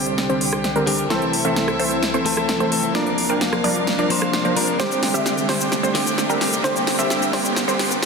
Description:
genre	EDM, festival progressive house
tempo	130 BPM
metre	4/4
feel	straight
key	C mixolydian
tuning	A4 = 445 Hz
part	direct-recorded clean electric guitar	accompaniment	0.0-8.1 s	D3 to C5	-25 LUFS	left 3 dB	tape echo
part	rich chamber string section	sustained chords	0.0-8.1 s	C2 to G5	-27 LUFS	equal	none
part	wide unison pluck	arpeggios	0.0-7.9 s	Bb4 to G5	-28 LUFS	right 1 dB	tape echo
part	supersaw stab	riff	0.0-7.9 s	D3 to G5	-23 LUFS	right 2 dB	cassette tape, low-pass filter, tape echo
part	riser	sound effects	1.4-8.1 s	none	-29 LUFS	right 2 dB	none
part	big-room dance drum kit	drums	0.1-8.1 s	hi-hat, rim click, shaker, snare drum	-24 LUFS	equal	overdrive, high-pass filter on hats, studio reverb, high-pass filter on snare, high-pass filter on perc
room	wet lush hall reverb, RT60 2.0 s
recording	dense, heavily limited modern master, high-pass filter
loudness	-17 LUFS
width	side -4 dB against mid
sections	0.0-8.1 A section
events	build-up 0.0-8.1; drum fill 0.0-8.1; filter sweep on supersaw synth 0.0-8.1; filter sweep on synth pluck 0.0-8.1; riser 1.4-8.1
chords	0.0 Csus2; 1.1 Am/C; 2.9 Bb/C; 4.8 Csus2

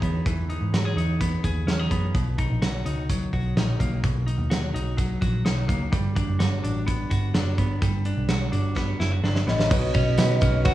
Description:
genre	jangly indie pop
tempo	127 BPM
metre	4/4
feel	straight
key	B major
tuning	A4 = 441 Hz
part	semi-hollow electric guitar	arpeggios	0.0-10.7 s	B2 to G#4	-28 LUFS	left 2 dB	tape echo
part	vintage muted picked electric bass	bass	0.0-10.7 s	F#1 to B2	-25 LUFS	right 1 dB	none
part	big rock drum kit	drums	0.0-10.7 s	crash cymbal, hi-hat, kick drum, ride cymbal, snare drum	-26 LUFS	right 1 dB	none
part	hollow clarinet-like synth lead	melody	9.5-10.7 s	D#5 to F#5	-27 LUFS	equal	chorus, phaser
part	reed electric piano	accompaniment	9.7-10.7 s	D#4 to D#5	-27 LUFS	right 2 dB	fast tremolo
part	tambourine	percussion	9.7-10.5 s	none	-40 LUFS	right 8 dB	none
room	light reverb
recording	worn, warbling old tape, cassette tape, warbly pitch drift, studio reverb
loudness	-22 LUFS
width	side -14 dB against mid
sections	0.0-9.7 A section; 9.7-10.7 B section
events	drum fill 8.8-9.7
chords	0.0 Emaj7; 2.1 Bmaj7; 5.9 Gmaj7; 9.7 Badd9

